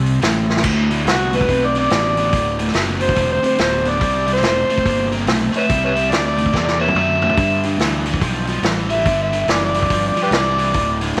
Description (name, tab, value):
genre	blues rock power trio and southern rock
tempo	142 BPM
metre	4/4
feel	swing 62% on 8ths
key	D mixolydian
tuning	A4 = 440 Hz
part	overdriven electric guitar	riff	0.0-11.2 s	D2 to Bb3	-24 LUFS	equal	none
part	fuzz fingered electric bass	bass	0.0-11.2 s	D1 to G2	-25 LUFS	equal	overdrive
part	vintage drum kit	drums	0.1-11.2 s	crash cymbal, hi-hat, kick drum, snare drum, toms	-24 LUFS	equal	none
part	overdriven harmonica	melody	1.1-11.0 s	F#4 to E5	-21 LUFS	equal	none
room	moderate echo chamber reverb, RT60 1.9 s, small room ambience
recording	none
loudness	-17 LUFS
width	mono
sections	0.6-11.2 A section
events	drum fill 0.4, 6.5-7.4; harmonica solo 0.6-11.2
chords	0.0 C5; 0.6 D; 4.0 C; 7.4 G